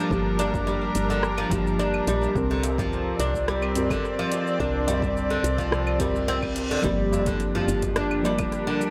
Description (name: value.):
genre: organic downtempo.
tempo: 107 BPM.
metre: 4/4.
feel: straight.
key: G minor pentatonic.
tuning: A4 = 441 Hz.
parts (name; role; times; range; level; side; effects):
muted felt-like synth keys; accompaniment; 0.0-8.9 s; F3 to Bb4; -32 LUFS; equal; chorus, sidechain pumping, analog delay.
rich chamber string section; sustained chords; 0.0-8.9 s; G3 to D5; -32 LUFS; equal; sidechain pumping.
oud; arpeggios; 0.0-8.8 s; D3 to D4; -30 LUFS; equal; tape echo.
woody FM bass; bass; 0.1-8.5 s; D1 to C2; -32 LUFS; equal; sidechain pumping.
deep house drum kit; drums; 0.1-8.9 s; claves, hi-hat, rim click, shaker; -35 LUFS; equal; overdrive, analog delay.
electronic kick drum; drums; 0.1-8.5 s; none; -35 LUFS; equal; overdrive.
darbuka; percussion; 0.4-8.9 s; none; -39 LUFS; equal; none.
reverse cymbal and impact; sound effects; 6.1-8.9 s; none; -40 LUFS; equal; none.
room: moderate plate reverb, RT60 2.5 s.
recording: echo-heavy mix.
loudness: -25 LUFS.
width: mono.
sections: 0.0-6.8 A section; 6.8-8.9 B section.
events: reverse cymbal 6.1-6.8; impact 6.8-8.9.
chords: 0.0 Gm7; 2.4 C5; 6.8 Gm7.